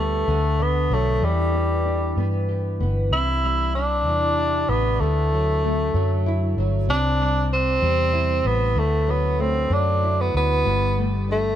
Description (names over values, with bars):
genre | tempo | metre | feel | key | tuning
six-eight pop ballad | 64 BPM (dotted quarters) | 6/8 | straight | unclear | A4 = 440 Hz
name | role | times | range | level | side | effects
warm tenor saxophone | melody | 0.0-11.6 s | G3 to E4 | -22 LUFS | equal | digital delay
nylon-string guitar | accompaniment | 0.0-11.6 s | C3 to G4 | -27 LUFS | left 1 dB | double-tracked left and right
vintage muted fingered electric bass | bass | 0.0-11.6 s | G1 to G2 | -22 LUFS | equal | none
room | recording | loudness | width
light reverb | none | -19 LUFS | side -10 dB against mid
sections
0.0-11.6 A section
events
none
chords
0.3 D; 1.2 Em7; 3.1 Cadd9; 5.0 Dadd9; 6.9 C; 8.8 Dadd9; 10.7 Gsus2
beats
0.28 | 1.22 2.16 | 3.11 4.06 | 5.00 5.94 | 6.88 7.82 | 8.76 9.70 | 10.65